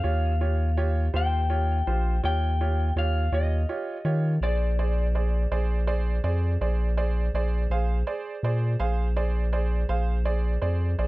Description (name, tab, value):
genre	blues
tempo	55 BPM (dotted quarters)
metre	12/8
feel	straight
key	Bb mixolydian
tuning	A4 = 440 Hz
part	electric guitar through a small old amp	melody	0.0-5.8 s	D5 to G5	-32 LUFS	left 4 dB	none
part	bright concert grand piano	accompaniment	0.0-11.1 s	F4 to F5	-31 LUFS	right 4 dB	none
part	saturated sub bass	bass	0.0-11.1 s	Bb1 to Eb3	-24 LUFS	equal	none
room	little or no reverb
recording	dry, close 1970s-style studio recording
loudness	-23 LUFS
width	side -19 dB against mid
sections	0.0-11.1 A section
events	none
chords	0.0 Eb9; 4.4 Bb9